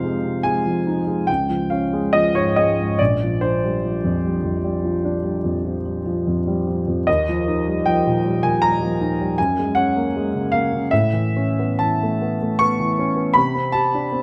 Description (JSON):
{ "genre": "classical, impressionist solo piano", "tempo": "63-80 BPM", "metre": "5/4", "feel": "rubato", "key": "unclear", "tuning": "A4 = 438 Hz", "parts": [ { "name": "warm grand piano", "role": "solo", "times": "0.0-14.2 s", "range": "Bb1 to C#6", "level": "-20 LUFS", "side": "equal", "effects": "none" } ], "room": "moderate recital hall reverb, RT60 1.4 s", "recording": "close, detailed microphones", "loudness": "-20 LUFS", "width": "mono", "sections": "0.0-14.2 A section", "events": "none", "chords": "0.0 Fm7; 1.3 Db; 3.0 Bb69; 7.1 Ebadd9; 9.4 Gbadd9; 10.9 Aadd9; 13.4 Csus2" }